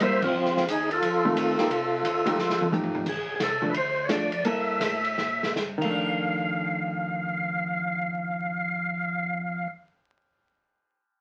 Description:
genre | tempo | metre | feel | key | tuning
soul jazz organ trio | 149-177 BPM | 4/4 | swing 64% on 8ths | F mixolydian | A4 = 440 Hz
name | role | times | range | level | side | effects
percussive tonewheel organ | melody | 0.0-9.7 s | C4 to F5 | -29 LUFS | equal | slow rotary speaker, overdrive, chorus vibrato
hollow-body jazz guitar | accompaniment | 0.0-9.8 s | Eb3 to A4 | -32 LUFS | equal | none
mellow tonewheel organ | bass | 0.0-9.7 s | F1 to C3 | -38 LUFS | equal | slow rotary speaker
open jazz drum kit | drums | 0.0-5.9 s | crash cymbal, hi-hat, kick drum, ride cymbal, snare drum, toms | -34 LUFS | equal | none
room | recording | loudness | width
wet studio ambience, RT60 0.5 s | very old 78 rpm record, vinyl crackle | -27 LUFS | mono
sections
0.0-3.1 A section; 3.1-6.0 B section; 6.0-9.2 C section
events
band accent 0.2; drum fill 2.4-3.1, 5.2-6.0; slowing down 3.1-6.0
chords
0.3 F7; 1.7 Cm; 2.4 F9; 3.1 Bbmaj7; 4.4 Gm69; 5.8 F6

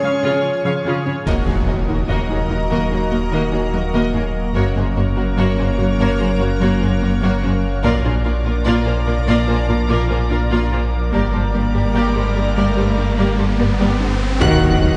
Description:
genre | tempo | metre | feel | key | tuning
cinematic, hybrid orchestral and electronic film score | 73 BPM | 4/4 | straight | unclear | A4 = 443 Hz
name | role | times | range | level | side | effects
clear symphonic viola section | accompaniment | 0.0-15.0 s | Bb3 to F5 | -27 LUFS | equal | none
mellow French horn section | sustained chords | 0.0-15.0 s | Bb3 to Gb4 | -30 LUFS | equal | none
organ-like drone | sustained chords | 0.0-15.0 s | F3 to Eb5 | -25 LUFS | equal | ensemble chorus, built-in reverb
soft round pluck | arpeggios | 0.0-15.0 s | Db3 to Bb4 | -29 LUFS | equal | none
rich symphonic cello section | bass | 0.0-15.0 s | Eb2 to Eb3 | -24 LUFS | equal | none
rich symphonic violin section | second line | 1.3-15.0 s | F4 to Gb5 | -30 LUFS | equal | none
sub bass with octave | bass | 1.3-15.0 s | Eb1 to Bb1 | -24 LUFS | equal | none
taiko ensemble | drums | 1.3-2.9, 7.8-9.5, 14.4-15.0 s | none | -27 LUFS | equal | none
impact and riser | sound effects | 1.3-15.0 s | none | -27 LUFS | equal | none
rich symphonic violin section | melody | 14.4-15.0 s | Gb6 | -26 LUFS | equal | none
warm trombone section | sustained chords | 14.4-15.0 s | none | barely audible | none | none
smooth synth bass | riff | 14.4-14.9 s | Eb2 | -25 LUFS | equal | none
mellow tuba | bass | 14.4-15.0 s | Eb2 | -23 LUFS | equal | none
rich symphonic double bass section | bass | 14.4-15.0 s | Eb2 | -26 LUFS | equal | none
room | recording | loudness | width
wet scoring stage reverb, RT60 1.6 s | heard from further back in the room, nothing above 10.8 kHz | -18 LUFS | mono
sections
0.0-1.3 A section; 1.3-14.4 B section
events
impact 1.3-4.6, 14.4-15.0; riser 10.5-14.4; band accent 14.4-15.0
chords
0.0 Db; 1.3 Ebm; 4.6 Gb; 7.8 Bb; 11.1 Gm; 14.4 Ebm

